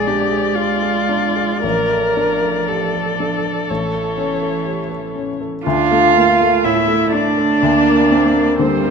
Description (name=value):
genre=classical, slow romantic movement for piano quartet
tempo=54-65 BPM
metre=4/4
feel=rubato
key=D minor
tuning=A4 = 441 Hz
part: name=muted violin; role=melody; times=0.0-8.9 s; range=C5 to F5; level=-21 LUFS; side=left 12 dB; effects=none
part: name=muted cello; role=second line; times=0.0-8.9 s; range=E3 to F4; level=-18 LUFS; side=right 6 dB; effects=none
part: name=muted viola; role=accompaniment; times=0.0-8.9 s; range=G3 to Bb4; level=-21 LUFS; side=right 2 dB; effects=none
part: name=warm baby grand piano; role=accompaniment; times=0.0-8.9 s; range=A1 to A4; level=-21 LUFS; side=left 4 dB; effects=none
room=wet recital hall reverb, RT60 1.7 s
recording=none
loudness=-14 LUFS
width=side -6 dB against mid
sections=0.0-5.6 A section; 5.6-8.9 B section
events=none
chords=0.0 Bb7; 1.6 Dm/A; 3.7 A; 5.6 Dm; 7.6 Gm/D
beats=0.56 | 1.63 2.68 3.69 4.65 | 5.65 6.64 7.61 8.58